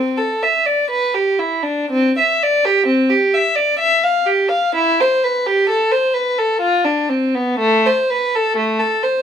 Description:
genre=classical, baroque-style suite movement for unaccompanied violin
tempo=63 BPM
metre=3/4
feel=rubato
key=unclear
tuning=A4 = 439 Hz
part: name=warm violin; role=solo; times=0.0-9.2 s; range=A3 to F5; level=-14 LUFS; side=equal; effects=none
room=light reverb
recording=minimal, uncompressed stereo recording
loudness=-14 LUFS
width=side -8 dB against mid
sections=0.0-9.2 A section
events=none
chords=none

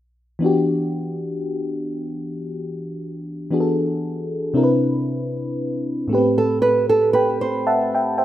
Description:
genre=R&B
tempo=58 BPM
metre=4/4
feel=swing 54% on 16ths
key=E minor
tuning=A4 = 440 Hz
part: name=mellow FM electric piano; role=accompaniment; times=0.4-8.2 s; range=A2 to B5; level=-20 LUFS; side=left 1 dB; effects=chorus
part: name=nylon-string guitar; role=arpeggios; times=6.4-8.2 s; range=A4 to C5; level=-18 LUFS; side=right 3 dB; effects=digital delay
room=light reverb, small room ambience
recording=rough home demo mix, faint mains hum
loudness=-18 LUFS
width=side -12 dB against mid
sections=0.4-8.2 A section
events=FM electric piano fill 7.1-8.2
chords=0.4 Em7; 4.6 Cmaj7; 6.1 Am7

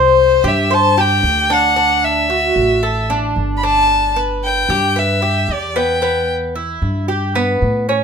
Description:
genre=latin, Cuban son and guajira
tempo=113 BPM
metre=4/4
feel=straight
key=G major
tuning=A4 = 440 Hz
part: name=rich violin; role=melody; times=0.0-6.3 s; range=C5 to B5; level=-16 LUFS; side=left 1 dB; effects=none
part: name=Cuban tres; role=arpeggios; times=0.0-8.0 s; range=B3 to C5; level=-16 LUFS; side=equal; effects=none
part: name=upright bass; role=bass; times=0.0-8.0 s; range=G1 to A2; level=-20 LUFS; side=equal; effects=none
room=light reverb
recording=minimal, uncompressed stereo recording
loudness=-13 LUFS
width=side -6 dB against mid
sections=0.0-8.0 A section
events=none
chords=0.0 C5; 1.8 D; 3.9 G; 6.0 Em

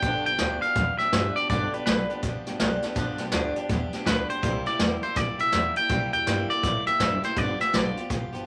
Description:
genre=rockabilly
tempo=164 BPM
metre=4/4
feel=swing 63% on 8ths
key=G mixolydian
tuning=A4 = 442 Hz
part: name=twangy electric guitar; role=melody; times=0.0-8.1 s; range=B4 to G5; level=-28 LUFS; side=equal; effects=none
part: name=picked swing-style acoustic guitar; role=accompaniment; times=0.0-8.5 s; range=G2 to G4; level=-34 LUFS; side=equal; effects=none
part: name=upright bass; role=bass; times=0.0-8.4 s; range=F1 to A2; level=-36 LUFS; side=equal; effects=none
part: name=jazz brush drum kit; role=drums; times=0.0-8.4 s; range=hi-hat, kick drum, snare drum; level=-30 LUFS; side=equal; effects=none
room=moderate club reverb, RT60 0.5 s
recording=none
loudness=-25 LUFS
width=mono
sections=0.0-8.5 A section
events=none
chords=0.0 G7; 4.4 C7; 7.4 G7

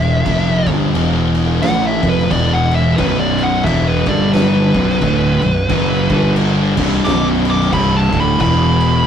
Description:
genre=stoner and doom metal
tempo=88 BPM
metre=4/4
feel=swing 59% on 8ths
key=B minor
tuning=A4 = 441 Hz
part: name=fuzz lead guitar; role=melody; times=0.0-9.1 s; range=B4 to D6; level=-19 LUFS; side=equal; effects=distortion
part: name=thick fuzz guitar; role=riff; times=0.0-9.1 s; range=B1 to A3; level=-17 LUFS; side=left 5 dB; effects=distortion
part: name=thick fuzz guitar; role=riff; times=0.0-9.1 s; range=B1 to A3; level=-18 LUFS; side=right 6 dB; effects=distortion
part: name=growling fingered electric bass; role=bass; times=0.0-9.0 s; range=B0 to A1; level=-22 LUFS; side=equal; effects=overdrive
part: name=oversized low-tuned drum kit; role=drums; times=0.3-8.9 s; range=crash cymbal, kick drum, snare drum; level=-21 LUFS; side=left 1 dB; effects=none
part: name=distorted electric guitar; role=riff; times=3.0-9.1 s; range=B1 to G3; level=-24 LUFS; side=equal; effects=distortion
room=light reverb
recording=rough rehearsal-room recording, tube saturation, faint mains hum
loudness=-12 LUFS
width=side -8 dB against mid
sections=0.0-9.1 A section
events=lead electric guitar solo 0.0-9.1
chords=0.0 E5; 3.0 B5; 4.0 G5; 4.7 Bm; 6.0 G5; 6.7 Bm; 8.4 E5

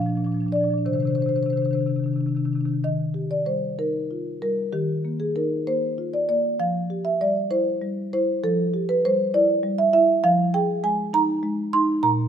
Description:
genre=classical, contemporary piece for solo marimba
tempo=60-67 BPM (dotted quarters)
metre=6/8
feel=rubato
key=unclear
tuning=A4 = 441 Hz
part: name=marimba with soft mallets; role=solo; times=0.0-12.3 s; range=Bb2 to C6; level=-20 LUFS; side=equal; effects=none
room=light reverb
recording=close, detailed microphones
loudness=-20 LUFS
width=side -8 dB against mid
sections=0.0-2.8 A section; 2.8-12.3 B section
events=none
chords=0.0 Bb; 0.9 Cmadd9; 2.8 Ebadd9; 4.7 Ebmaj13; 6.6 Fmaj7sus2; 10.2 Fm7

